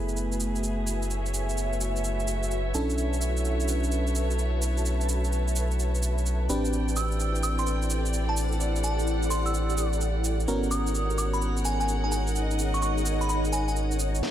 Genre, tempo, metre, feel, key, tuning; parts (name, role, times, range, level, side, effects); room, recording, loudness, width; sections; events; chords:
UK garage, two-step garage; 128 BPM; 4/4; swing 65% on 16ths; A4 = 440 Hz
warm studio violin section; sustained chords; 0.0-14.3 s; A3 to G5; -36 LUFS; left 1 dB; low-pass filter
FM electric piano; stabs; 0.0-14.2 s; A3 to B4; -34 LUFS; right 1 dB; chorus, low-pass filter, digital delay
rubbery square bass; bass; 0.0-14.3 s; F#1 to B1; -27 LUFS; equal; high-pass filter
ethereal airy pad; texture; 0.1-14.3 s; D#4 to A5; -33 LUFS; equal; ensemble chorus, built-in reverb, tremolo
electronic cabasa and snare drum; drums; 0.1-14.3 s; -35 LUFS; right 3 dB
glassy synth bell; melody; 7.0-13.7 s; G#5 to E6; -32 LUFS; right 1 dB; chorus, vintage 12-bit sampler grit, digital delay
light reverb; -24 LUFS; side -11 dB against mid
0.0-14.2 A section
filter sweep on FM electric piano 0.0-14.2; filter sweep on violin section 0.0-14.2
0.0 F#m11; 2.7 Bm11; 6.5 Am11; 10.5 G#m11